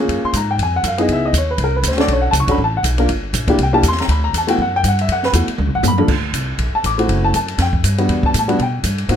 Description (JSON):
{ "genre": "jazz, small-group swing and bop", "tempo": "240 BPM", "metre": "4/4", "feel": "swing 58% on 8ths", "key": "unclear", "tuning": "A4 = 439 Hz", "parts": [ { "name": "warm baby grand piano", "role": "accompaniment", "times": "0.0-9.2 s", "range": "G2 to D6", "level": "-17 LUFS", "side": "left 1 dB", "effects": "none" }, { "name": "upright bass", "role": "bass", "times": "0.0-9.2 s", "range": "F#1 to B2", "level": "-19 LUFS", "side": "equal", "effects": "none" }, { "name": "open jazz drum kit", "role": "drums", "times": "0.1-9.2 s", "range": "crash cymbal, hi-hat, kick drum, ride cymbal, snare drum, toms", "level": "-22 LUFS", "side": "equal", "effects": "none" } ], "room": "little or no reverb", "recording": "close, detailed microphones", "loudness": "-14 LUFS", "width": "side -9 dB against mid", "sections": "0.0-6.1 A section; 6.1-9.2 A section", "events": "drum fill 5.6-6.1", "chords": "0.1 F#maj9; 1.1 C#m9; 1.6 Csus2; 2.1 Bm9; 3.1 Gm; 3.6 C9; 4.1 D6; 5.6 D7; 6.1 Amadd11; 7.1 F#m7b5; 7.6 Fsus2; 8.1 Em9" }